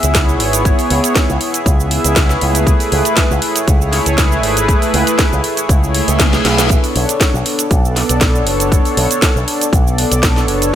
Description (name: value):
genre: nu-disco, nu disco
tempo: 119 BPM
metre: 4/4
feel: straight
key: B dorian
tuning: A4 = 440 Hz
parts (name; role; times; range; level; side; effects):
- warm analog pad; accompaniment; 0.0-10.7 s; A3 to E5; -16 LUFS; equal; chorus, dub echo
- picked electric bass with an envelope filter; bass; 0.0-10.8 s; F#1 to C#2; -17 LUFS; equal; none
- house drum kit; drums; 0.0-10.7 s; hi-hat, shaker, snare drum, toms; -18 LUFS; right 1 dB; none
- electronic kick drum; drums; 0.1-10.3 s; none; -14 LUFS; equal; none
- reverse cymbal; sound effects; 5.9-6.7 s; none; -23 LUFS; left 5 dB; none
room: digital ambience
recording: none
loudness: -11 LUFS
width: side -10 dB against mid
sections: 0.0-10.8 A section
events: reverse cymbal 5.9-6.7; drum fill 6.2-6.7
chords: 0.0 C#m7; 2.4 Amaj9; 6.7 Bm9